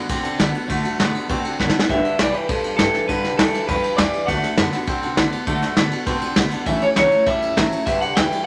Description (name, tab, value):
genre	rockabilly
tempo	201 BPM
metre	4/4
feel	straight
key	D mixolydian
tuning	A4 = 441 Hz
part	electric guitar through a small old amp	melody	0.0-8.5 s	A4 to G5	-23 LUFS	equal	none
part	picked steel-string acoustic guitar	accompaniment	0.0-8.5 s	A2 to B4	-29 LUFS	equal	none
part	twangy electric guitar	riff	0.0-8.4 s	G2 to C4	-28 LUFS	equal	spring reverb
part	upright bass	bass	0.1-8.4 s	F#1 to D3	-32 LUFS	equal	none
part	soft brush drum kit	drums	0.1-8.4 s	kick drum, ride cymbal, snare drum	-24 LUFS	equal	none
room	wet studio reverb, RT60 0.7 s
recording	none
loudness	-20 LUFS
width	mono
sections	0.0-8.5 A section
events	drum fill 1.6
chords	0.0 D; 1.9 G; 4.3 D; 6.7 A; 7.9 G